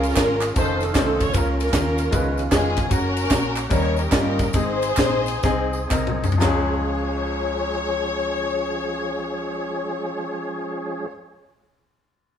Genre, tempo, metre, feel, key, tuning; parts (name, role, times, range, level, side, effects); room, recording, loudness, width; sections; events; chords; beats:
uptempo gospel; 114-153 BPM; 4/4; swing 65% on 8ths; Db major; A4 = 440 Hz
warm studio string section; melody; 0.0-11.1 s; Cb4 to Db5; -26 LUFS; left 2 dB
warm baby grand piano; accompaniment; 0.0-11.1 s; Db2 to C5; -26 LUFS; left 2 dB
tonewheel organ; sustained chords; 0.0-11.1 s; Eb3 to Bb4; -29 LUFS; right 2 dB; fast rotary speaker, chorus vibrato
hollow-body short-scale fingered electric bass; bass; 0.0-11.1 s; F1 to Eb2; -28 LUFS; equal
tight funk drum kit; drums; 0.0-6.6 s; kick drum, ride cymbal, snare drum, toms; -23 LUFS; equal
tambourine and handclaps; percussion; 0.0-6.7 s; -33 LUFS; right 2 dB
moderate stone room reverb, RT60 1.2 s; band playing live in one room; -20 LUFS; side -8 dB against mid
0.0-6.4 A section; 6.4-10.6 B section
slowing down 2.9-6.4; drum fill 5.4-6.4
0.0 Db; 0.6 F7b13; 1.3 Bbm/Db; 2.1 Db9; 2.9 Gb; 3.7 Eb7; 4.5 Ab; 6.4 Db
0.17 0.56 0.95 | 1.34 1.74 2.13 2.52 | 2.92 3.31 3.71 4.12 | 4.54 4.97 5.43 5.91 | 6.42 6.94 7.47 7.99 | 8.52 9.04 9.56 10.09